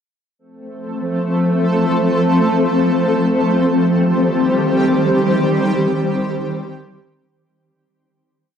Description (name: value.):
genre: hip hop.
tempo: free time.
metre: none.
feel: none.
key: F mixolydian.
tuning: A4 = 440 Hz.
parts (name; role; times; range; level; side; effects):
shimmering ambient pad; solo; 0.8-7.3 s; Eb3 to C5; -14 LUFS; equal; chorus, built-in reverb, tape echo.
room: moderate huge ambient reverb, RT60 3.9 s.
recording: dark, warm production.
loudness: -14 LUFS.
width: side -8 dB against mid.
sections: 0.4-7.3 verse.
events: fade-out 5.6-7.3.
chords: 0.4 F; 3.8 Cm.